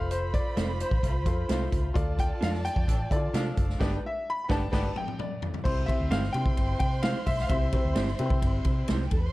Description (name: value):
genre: uptempo 1960s-style soul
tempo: 130 BPM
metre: 4/4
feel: straight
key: C major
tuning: A4 = 440 Hz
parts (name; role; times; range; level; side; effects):
- clear grand piano; melody; 0.0-8.8 s; C5 to B5; -34 LUFS; left 2 dB; none
- warm horn section; second line; 0.0-4.8 s; D3 to C5; -42 LUFS; left 3 dB; none
- warm studio violin section; second line; 0.0-9.3 s; D4 to C6; -38 LUFS; right 3 dB; none
- warm upright piano; accompaniment; 0.0-8.9 s; C4 to D5; -35 LUFS; left 3 dB; none
- vintage muted fingered electric bass; bass; 0.0-9.3 s; F1 to D3; -30 LUFS; equal; none
- swinging big-band drum kit; drums; 0.1-9.2 s; crash cymbal, hi-hat, kick drum, ride cymbal, snare drum, toms; -28 LUFS; equal; none
- electric guitar through a small old amp; stabs; 0.6-9.0 s; C4 to D5; -37 LUFS; right 3 dB; none
room: light reverb, small room ambience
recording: dark, warm production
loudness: -25 LUFS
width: side -18 dB against mid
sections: 0.0-5.7 A section; 5.7-9.3 B section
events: grand piano solo 0.0-5.7; drum fill 3.8-5.7; band accent 3.8-5.7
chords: 0.0 F; 2.0 Dm; 3.8 G; 5.7 C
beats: | 0.11 0.57 1.03 1.49 | 1.96 2.42 2.88 3.34 | 3.81 4.27 4.73 5.19 | 5.65 6.11 6.58 7.04 | 7.50 7.96 8.42 8.88